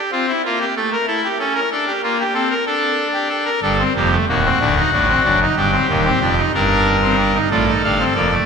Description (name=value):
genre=classical, baroque-style 4-part fugue for pipe organ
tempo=62 BPM (dotted quarters)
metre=6/8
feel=straight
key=G minor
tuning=A4 = 441 Hz
part: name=pipe organ, trumpet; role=solo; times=0.0-8.5 s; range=D1 to F5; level=-15 LUFS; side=equal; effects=none
room=wet church reverb, RT60 3.5 s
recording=minimal, uncompressed stereo recording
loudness=-15 LUFS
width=side -6 dB against mid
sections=0.0-7.5 A section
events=none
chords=0.0 N.C.; 0.8 A7; 1.7 Dm; 2.7 D5; 3.6 Gm; 4.6 D7; 5.6 Gm; 7.5 Dm